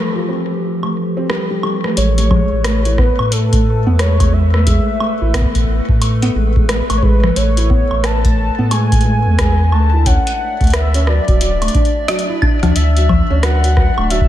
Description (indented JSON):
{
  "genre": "IDM",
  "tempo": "89 BPM",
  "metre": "4/4",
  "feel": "swing 62% on 16ths",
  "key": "A major",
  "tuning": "A4 = 442 Hz",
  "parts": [
    { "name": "warbly tape-like pad", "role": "sustained chords", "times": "0.0-14.3 s", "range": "E3 to E5", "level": "-24 LUFS", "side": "left 1 dB", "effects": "chorus, built-in reverb, sidechain pumping" },
    { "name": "felt-muted upright piano", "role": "arpeggios", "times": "0.0-14.3 s", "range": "F#3 to F4", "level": "-21 LUFS", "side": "right 2 dB", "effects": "ping-pong delay" },
    { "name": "electro analog drum machine", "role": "drums", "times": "0.8-14.3 s", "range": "congas, hi-hat, rim click, woodblock", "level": "-21 LUFS", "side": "left 1 dB", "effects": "none" },
    { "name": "warm velvety synth lead", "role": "melody", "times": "2.0-14.3 s", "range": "A4 to A5", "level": "-22 LUFS", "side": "left 1 dB", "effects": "chorus, slapback echo, ping-pong delay" },
    { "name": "warm sub bass", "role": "bass", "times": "2.0-14.3 s", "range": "D1 to A2", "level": "-15 LUFS", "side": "equal", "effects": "none" },
    { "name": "electronic kick drum", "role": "drums", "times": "2.3-14.3 s", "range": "none", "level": "-15 LUFS", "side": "equal", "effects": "none" }
  ],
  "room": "light reverb",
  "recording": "none",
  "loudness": "-12 LUFS",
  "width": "side -12 dB against mid",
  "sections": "0.0-2.0 A section; 2.0-14.3 B section",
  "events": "none",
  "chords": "0.0 Fmaj9; 2.0 Amaj9; 9.7 Dadd9"
}